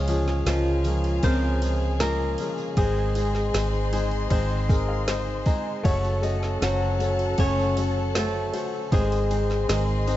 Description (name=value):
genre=pop ballad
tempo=78 BPM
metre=4/4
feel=straight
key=Db major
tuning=A4 = 436 Hz
part: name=warm baby grand piano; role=accompaniment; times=0.0-10.2 s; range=Ab2 to Bb5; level=-30 LUFS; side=left 4 dB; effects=none
part: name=warm studio string section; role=sustained chords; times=0.0-10.2 s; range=Db4 to C6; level=-34 LUFS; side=left 4 dB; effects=none
part: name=flamenco guitar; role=arpeggios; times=0.0-10.2 s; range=Ab2 to A4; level=-35 LUFS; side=right 7 dB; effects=tape echo
part: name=vintage muted fingered electric bass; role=bass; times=0.0-10.2 s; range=Gb1 to Db2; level=-25 LUFS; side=equal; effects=none
part: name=smooth R&B drum kit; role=drums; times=0.1-10.2 s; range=kick drum, ride cymbal, snare drum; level=-27 LUFS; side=equal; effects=none
part: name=tambourine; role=percussion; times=0.1-10.2 s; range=none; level=-44 LUFS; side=right 7 dB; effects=none
part: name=flamenco guitar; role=melody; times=0.5-10.2 s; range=F3 to Db5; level=-28 LUFS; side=left 1 dB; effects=none
room=small room ambience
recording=dark, warm production, nothing above 7.8 kHz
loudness=-22 LUFS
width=side -14 dB against mid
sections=0.0-10.2 A section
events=grand piano fill 4.3-5.9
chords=0.0 Db; 2.8 Ab; 5.9 Gbm; 8.9 Ab